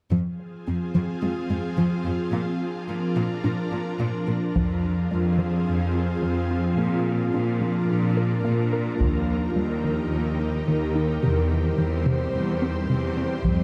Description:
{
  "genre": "cinematic, hybrid orchestral and electronic film score",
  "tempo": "108 BPM",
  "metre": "4/4",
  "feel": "straight",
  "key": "F dorian",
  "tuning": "A4 = 440 Hz",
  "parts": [
    { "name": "ethereal airy pad", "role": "sustained chords", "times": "0.6-13.6 s", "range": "Eb3 to C5", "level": "-28 LUFS", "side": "equal", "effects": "ensemble chorus, built-in reverb" },
    { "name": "woody wave-folded pluck", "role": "arpeggios", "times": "0.1-13.6 s", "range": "C3 to Bb4", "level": "-31 LUFS", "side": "equal", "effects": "chorus, tape echo" },
    { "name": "rich symphonic cello section", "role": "bass", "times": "0.1-13.6 s", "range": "Eb2 to Bb2", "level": "-28 LUFS", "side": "equal", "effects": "none" },
    { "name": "solo taiko drums", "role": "drums", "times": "4.6-5.6, 9.0-10.1, 13.4-13.6 s", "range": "none", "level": "-29 LUFS", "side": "equal", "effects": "none" }
  ],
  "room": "light reverb",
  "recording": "close, detailed microphones",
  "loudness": "-25 LUFS",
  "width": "mono",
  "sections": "0.1-4.6 A section; 4.6-13.6 B section",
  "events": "none",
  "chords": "0.1 Fm; 2.3 Bb; 4.6 Fm; 6.8 Bb; 9.0 Eb; 11.2 C/E"
}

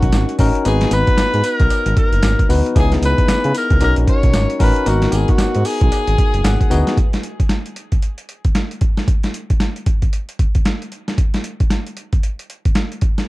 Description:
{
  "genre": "R&B, new jack swing",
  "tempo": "114 BPM",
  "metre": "4/4",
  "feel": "swing 61% on 16ths",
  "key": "G# minor",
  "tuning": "A4 = 441 Hz",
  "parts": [
    { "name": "warm tenor saxophone", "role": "melody", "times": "0.0-6.7 s", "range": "F#4 to C#5", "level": "-21 LUFS", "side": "equal", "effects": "none" },
    { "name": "bell-like tine electric piano", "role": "accompaniment", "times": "0.0-7.0 s", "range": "B3 to G#5", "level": "-21 LUFS", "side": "left 4 dB", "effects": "none" },
    { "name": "smooth gliding synth bass", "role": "bass", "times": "0.0-6.8 s", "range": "F#1 to C#3", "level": "-17 LUFS", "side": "equal", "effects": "none" },
    { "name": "boom bap sampler-style drum kit", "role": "drums", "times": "0.0-13.3 s", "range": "hi-hat, kick drum, snare drum, tambourine", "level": "-16 LUFS", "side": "equal", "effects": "overdrive" },
    { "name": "cowbell", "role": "percussion", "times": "0.1-6.6 s", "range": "none", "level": "-36 LUFS", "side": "right 4 dB", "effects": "none" }
  ],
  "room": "little or no reverb",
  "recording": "dark, warm production",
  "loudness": "-14 LUFS",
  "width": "side -19 dB against mid",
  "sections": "0.0-7.0 A section; 7.0-13.3 B section",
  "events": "tine electric piano fill 6.2-7.0",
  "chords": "0.0 Bmaj9; 0.7 G#m9; 2.8 C#m9; 3.8 Bmaj9; 4.9 G#m9; 7.0 N.C."
}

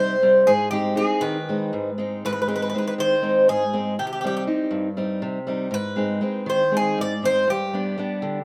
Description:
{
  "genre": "greek folk",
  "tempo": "240 BPM (eighths)",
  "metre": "7/8",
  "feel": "straight",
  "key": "unclear",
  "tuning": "A4 = 440 Hz",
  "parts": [
    { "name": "Greek bouzouki", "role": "melody", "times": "0.0-8.4 s", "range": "G4 to D5", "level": "-23 LUFS", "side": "equal", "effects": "none" },
    { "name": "picked steel-string acoustic guitar", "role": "accompaniment", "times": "0.0-8.4 s", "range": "G2 to Eb4", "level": "-27 LUFS", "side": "equal", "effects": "none" }
  ],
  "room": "light reverb",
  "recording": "none",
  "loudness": "-22 LUFS",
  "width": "mono",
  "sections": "0.0-8.4 A section",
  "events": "none",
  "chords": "0.5 Ab; 4.0 Cm; 5.7 Ab; 7.5 G"
}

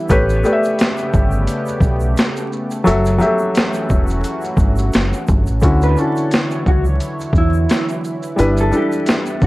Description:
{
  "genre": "lo-fi hip hop",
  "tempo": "87 BPM",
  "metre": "4/4",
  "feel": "swing 55% on 16ths",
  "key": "D major",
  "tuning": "A4 = 440 Hz",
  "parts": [
    { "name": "mellow electric guitar", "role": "melody", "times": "0.0-0.1, 5.8-9.5 s", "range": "E4 to B4", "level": "-24 LUFS", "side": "right 2 dB", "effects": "wide subtle chorus, low-pass filter, analog delay" },
    { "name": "felt-muted upright piano", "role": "accompaniment", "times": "0.0-9.5 s", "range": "D3 to E5", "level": "-19 LUFS", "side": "left 1 dB", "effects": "cassette tape, low-pass filter" },
    { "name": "lush unison pad", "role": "sustained chords", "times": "0.0-9.5 s", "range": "C#3 to C#5", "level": "-25 LUFS", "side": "right 1 dB", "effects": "chorus, low-pass filter" },
    { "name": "deep dub fingered electric bass", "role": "bass", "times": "0.1-9.5 s", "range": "E1 to E2", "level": "-17 LUFS", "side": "equal", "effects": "none" },
    { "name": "boom bap sampler-style drum kit", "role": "drums", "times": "0.1-9.5 s", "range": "hi-hat, kick drum, shaker, snare drum", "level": "-17 LUFS", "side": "equal", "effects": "overdrive" },
    { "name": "egg shaker", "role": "percussion", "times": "0.1-9.4 s", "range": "none", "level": "-44 LUFS", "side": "right 4 dB", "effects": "none" }
  ],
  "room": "light reverb",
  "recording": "vinyl crackle",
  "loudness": "-14 LUFS",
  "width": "side -19 dB against mid",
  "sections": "0.0-5.6 A section; 5.6-9.5 B section",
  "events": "none",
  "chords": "0.1 A9; 2.9 F#m7; 5.6 Dmaj9; 8.4 G6"
}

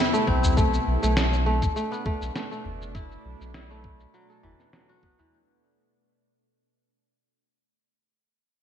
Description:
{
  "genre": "organic downtempo",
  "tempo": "101 BPM",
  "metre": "4/4",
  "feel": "swing 54% on 16ths",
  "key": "unclear",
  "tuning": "A4 = 435 Hz",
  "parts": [
    { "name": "bowed-like drone", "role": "sustained chords", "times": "0.0-5.3 s", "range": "B2 to E4", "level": "-32 LUFS", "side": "left 1 dB", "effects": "built-in reverb, vintage 12-bit sampler grit, sidechain pumping" },
    { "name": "kora", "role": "arpeggios", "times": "0.0-6.9 s", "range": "E3 to A4", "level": "-28 LUFS", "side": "equal", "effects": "low-pass filter, ping-pong delay" },
    { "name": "electronic shaker and snare drum", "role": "drums", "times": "0.1-5.3 s", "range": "none", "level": "-29 LUFS", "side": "right 1 dB", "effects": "low-pass filter on perc, low-pass filter on snare, gated reverb" },
    { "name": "warm sub bass", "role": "bass", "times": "0.3-4.5 s", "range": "F#1 to B1", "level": "-26 LUFS", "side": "equal", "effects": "none" },
    { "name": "electronic kick drum", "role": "drums", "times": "0.3-5.2 s", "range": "none", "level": "-26 LUFS", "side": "equal", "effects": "none" },
    { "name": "udu", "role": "percussion", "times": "0.4-5.3 s", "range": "none", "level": "-31 LUFS", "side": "left 1 dB", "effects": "none" }
  ],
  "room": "moderate lush hall reverb, RT60 1.8 s, small room ambience",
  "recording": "bright 1980s-style digital production",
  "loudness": "-22 LUFS",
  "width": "side -9 dB against mid",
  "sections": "0.0-5.3 A section",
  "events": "fade-out 0.0-5.3; filter sweep on drum 0.0-5.3",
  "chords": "0.0 Am; 0.6 Bm7"
}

